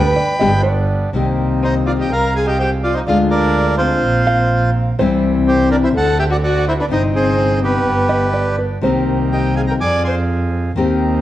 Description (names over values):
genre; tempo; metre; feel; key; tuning
tango; 125 BPM; 4/4; rubato; C minor; A4 = 440 Hz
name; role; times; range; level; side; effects
bandoneon; melody; 0.0-10.2 s; F4 to D6; -19 LUFS; right 2 dB; none
dark violin; second line; 0.0-10.2 s; B3 to D5; -22 LUFS; left 2 dB; none
hollow-body jazz guitar; second line; 0.0-1.1, 4.3-9.2 s; B4 to F5; -22 LUFS; right 3 dB; none
bandoneon; stabs; 0.0-11.2 s; G3 to G5; -28 LUFS; right 3 dB; none
clear double bass; bass; 0.0-11.2 s; G1 to F2; -18 LUFS; right 1 dB; none
nylon-string guitar; accompaniment; 0.4-11.2 s; B2 to G4; -18 LUFS; left 4 dB; none
room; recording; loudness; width
moderate large studio reverb, RT60 1.3 s; worn, warbling old tape, cassette tape, warbly pitch drift; -14 LUFS; side -13 dB against mid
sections
0.0-1.1 A section; 1.1-11.2 B section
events
none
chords
0.0 G; 1.1 Cm7; 2.1 Fm/C; 3.1 Ddim; 4.0 Bbsus2; 5.0 C; 5.9 D7; 6.9 Cm/G; 7.9 G; 8.8 Cm7; 9.8 Fm